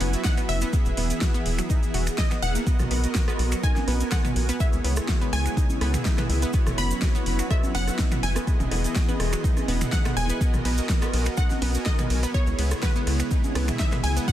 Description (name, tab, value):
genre	progressive house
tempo	124 BPM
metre	4/4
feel	straight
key	B major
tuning	A4 = 438 Hz
part	wide unison pluck	melody	0.0-14.3 s	B4 to B5	-34 LUFS	equal	tape echo
part	airy breathy pad	sustained chords	0.0-14.3 s	C#3 to D#5	-34 LUFS	equal	chorus, sidechain pumping
part	analog pluck	arpeggios	0.0-14.3 s	F#3 to F#5	-34 LUFS	right 1 dB	chorus, sidechain pumping, dub echo
part	soft supersaw	stabs	0.0-14.3 s	B3 to G#5	-32 LUFS	right 3 dB	cassette tape, sidechain pumping, dub echo
part	tight sequencer bass	bass	0.0-14.2 s	E1 to C#2	-25 LUFS	equal	sidechain pumping
part	deep house drum kit	drums	0.0-14.3 s	finger snaps, hi-hat, ride cymbal, snare drum	-32 LUFS	equal	sidechain pumping on hats, studio reverb, sidechain pumping on cymbals
part	tube shaker	percussion	0.1-14.3 s	none	-39 LUFS	right 4 dB	none
part	electronic kick drum	drums	0.2-14.3 s	none	-24 LUFS	equal	studio reverb
part	punchy analog drum machine	percussion	2.8-14.0 s	congas, rim click, toms	-33 LUFS	right 2 dB	soft clipping on snare, sidechain pumping on snare, studio reverb, sidechain pumping on toms, sidechain pumping on perc
room	little or no reverb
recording	dense, heavily limited modern master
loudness	-21 LUFS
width	side -12 dB against mid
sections	0.0-14.3 A section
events	none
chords	0.0 F#7sus4; 0.7 Emaj7; 2.7 Bmaj7; 4.6 C#m7; 6.5 F#7sus4; 8.5 Emaj7; 10.4 Bmaj7; 12.3 C#m7